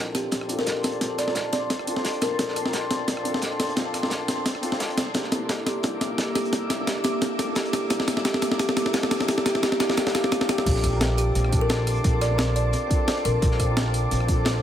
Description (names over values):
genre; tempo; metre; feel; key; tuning
liquid drum and bass; 174 BPM; 4/4; straight; Bb lydian; A4 = 440 Hz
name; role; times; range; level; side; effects
warm grand piano; accompaniment; 0.0-14.6 s; Bb3 to Bb4; -31 LUFS; left 1 dB; low-pass filter, tape echo
glassy FM pad; sustained chords; 0.0-14.6 s; Bb3 to D6; -32 LUFS; left 1 dB; ensemble chorus, built-in reverb
upright bass; bass; 0.0-14.6 s; G1 to E2; -29 LUFS; equal; high-pass filter
kalimba; melody; 0.1-2.5, 5.7-13.5 s; G4 to D5; -29 LUFS; equal; tape echo
breakbeat sampler-style drum kit; drums; 0.1-14.5 s; crash cymbal, hi-hat, rim click, snare drum; -26 LUFS; equal; analog delay
crunchy breakbeat drum kit; drums; 0.2-14.5 s; hi-hat, snare drum; -34 LUFS; equal; high-pass filter on hats, high-pass filter on snare, high-pass filter on room, analog delay
electronic kick drum; drums; 0.3-14.4 s; none; -27 LUFS; equal; high-pass filter on kick, high-pass filter on room
room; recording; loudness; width
moderate plate reverb, RT60 1.9 s, small room ambience; echo-heavy mix; -22 LUFS; side -10 dB against mid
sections
0.0-10.7 A section; 10.7-14.6 B section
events
build-up 0.0-10.7; drum fill 0.0-10.7; filter sweep on grand piano 0.0-10.7; filter sweep on ambient pad 0.0-10.7; drop 10.7-14.6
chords
0.0 Bbmaj9; 5.0 C9; 10.7 Bbmaj9